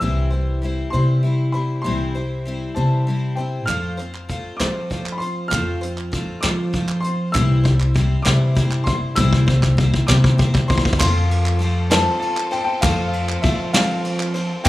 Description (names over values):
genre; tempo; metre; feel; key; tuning
indie folk with a building arrangement; 66 BPM (dotted quarters); 6/8; straight; unclear; A4 = 440 Hz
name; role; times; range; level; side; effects
clear upright piano; melody; 0.0-14.7 s; E5 to F6; -27 LUFS; left 2 dB; analog delay
fingerpicked steel-string acoustic guitar; accompaniment; 0.0-3.7 s; C3 to E4; -30 LUFS; left 2 dB; none
picked twelve-string acoustic guitar; accompaniment; 0.0-14.7 s; C3 to C5; -26 LUFS; left 2 dB; none
upright bass; bass; 0.0-14.7 s; C2 to F3; -20 LUFS; equal; none
vintage brush drum kit; drums; 3.7-14.7 s; crash cymbal, hi-hat, kick drum, ride cymbal, snare drum; -21 LUFS; equal; none
group handclap; percussion; 3.7-14.7 s; none; -28 LUFS; right 4 dB; none
warm chamber string section; sustained chords; 11.0-14.7 s; C4 to A4; -30 LUFS; equal; none
room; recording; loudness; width
studio reverb; rough home demo mix, small room ambience; -17 LUFS; side -16 dB against mid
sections
0.0-11.0 A section; 11.0-14.7 B section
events
build-up 0.0-11.0; drum fill 3.7-11.0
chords
0.0 C; 3.7 F; 7.3 C; 11.0 F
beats
| 0.01 0.93 | 1.85 2.77 | 3.69 4.60 | 5.52 6.43 | 7.35 8.26 | 9.17 10.09 | 11.00 11.91 | 12.82 13.74 | 14.65